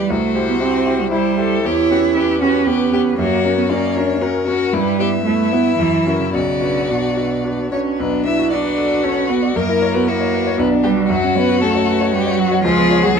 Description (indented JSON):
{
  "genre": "quick classical-period movement for piano quartet",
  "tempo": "116 BPM",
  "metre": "3/4",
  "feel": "rubato",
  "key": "B minor",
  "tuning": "A4 = 441 Hz",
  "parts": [
    { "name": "rich violin", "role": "melody", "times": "0.0-13.2 s", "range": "C#4 to A#4", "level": "-21 LUFS", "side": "left 8 dB", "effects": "none" },
    { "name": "clear violin", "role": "second line", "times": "0.0-13.2 s", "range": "E#4 to E5", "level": "-23 LUFS", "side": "left 4 dB", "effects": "none" },
    { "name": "rich cello", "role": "second line", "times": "0.0-13.2 s", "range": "B2 to E4", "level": "-18 LUFS", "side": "right 7 dB", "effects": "none" },
    { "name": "bright grand piano", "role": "accompaniment", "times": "0.0-13.2 s", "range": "B1 to D5", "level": "-20 LUFS", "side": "left 2 dB", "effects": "none" }
  ],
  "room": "moderate studio reverb, RT60 0.6 s",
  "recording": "dark, warm production",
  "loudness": "-14 LUFS",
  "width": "side -6 dB against mid",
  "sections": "0.0-8.0 A section; 8.0-13.2 B section",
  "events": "none",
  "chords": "0.1 C; 1.7 C#m7b5/E; 3.2 F#; 4.7 Em/G; 5.8 F#7; 6.3 Bm; 9.6 F#7; 10.6 Bm; 11.1 F#m; 12.6 C#7"
}